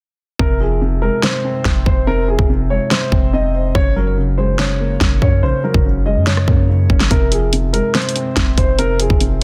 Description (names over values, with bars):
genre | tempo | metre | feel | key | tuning
hip hop, trap | 143 BPM | 4/4 | half-time | F phrygian | A4 = 439 Hz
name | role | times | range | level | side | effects
dark concert grand piano | melody | 0.4-9.2 s | Ab4 to Eb5 | -24 LUFS | equal | delay
felt-muted upright piano | accompaniment | 0.4-9.4 s | C3 to C5 | -23 LUFS | equal | none
warm 808-style bass | bass | 0.4-9.4 s | F1 to Gb2 | -20 LUFS | equal | none
pop drum kit | drums | 0.4-9.3 s | hi-hat, kick drum, rim click, snare drum | -19 LUFS | equal | none
room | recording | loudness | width
little or no reverb | dense, heavily limited modern master | -16 LUFS | mono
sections
0.4-9.4 A section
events
hi-hats muted 0.4-7.1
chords
0.4 Fm; 3.8 Gbadd9; 7.1 Fm